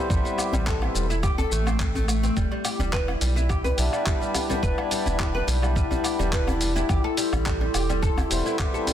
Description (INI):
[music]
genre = organic downtempo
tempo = 106 BPM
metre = 4/4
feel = swing 54% on 16ths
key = A minor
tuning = A4 = 441 Hz
[part]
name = hand-pumped harmonium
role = accompaniment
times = 0.0-8.9 s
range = G3 to G4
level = -30 LUFS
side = left 1 dB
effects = sidechain pumping, low-pass filter, digital delay
[part]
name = oud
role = arpeggios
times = 0.0-8.9 s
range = G3 to B4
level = -29 LUFS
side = left 1 dB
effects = digital delay
[part]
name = round analog bass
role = bass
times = 0.1-8.4 s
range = E1 to B1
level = -26 LUFS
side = equal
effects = sidechain pumping
[part]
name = dusty soul sampler-style drum kit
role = drums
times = 0.1-8.9 s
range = handclaps, hi-hat, shaker, woodblock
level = -31 LUFS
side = left 1 dB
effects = studio reverb
[part]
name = electronic kick drum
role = drums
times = 0.1-8.7 s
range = none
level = -26 LUFS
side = equal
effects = studio reverb
[part]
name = djembe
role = percussion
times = 0.4-8.9 s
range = none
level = -32 LUFS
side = left 1 dB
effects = none
[part]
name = warbly tape-like pad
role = sustained chords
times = 2.7-8.9 s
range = E4 to C6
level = -30 LUFS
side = left 2 dB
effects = chorus, built-in reverb, sidechain pumping
[sound]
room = light reverb, studio reverb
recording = dense, heavily limited modern master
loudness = -22 LUFS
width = side -10 dB against mid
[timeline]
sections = 0.0-8.9 A section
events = none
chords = 0.0 Am7; 2.4 Em7; 6.9 Am7